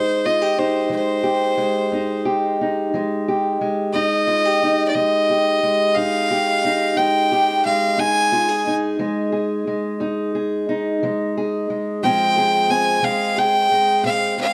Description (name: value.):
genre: acoustic country blues, solo or duo.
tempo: 59 BPM (dotted quarters).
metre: 12/8.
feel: straight.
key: F minor.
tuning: A4 = 440 Hz.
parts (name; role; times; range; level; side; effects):
clear fiddle; melody; 0.0-14.5 s; C5 to Ab5; -20 LUFS; equal; none.
fingerpicked steel-string acoustic guitar; accompaniment; 0.0-14.5 s; F2 to Ab4; -23 LUFS; equal; none.
room: moderate small room ambience, RT60 0.5 s.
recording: dark, warm production.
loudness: -19 LUFS.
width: mono.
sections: 0.0-14.5 A section.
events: none.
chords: 0.0 Fm9; 12.0 Bbsus2.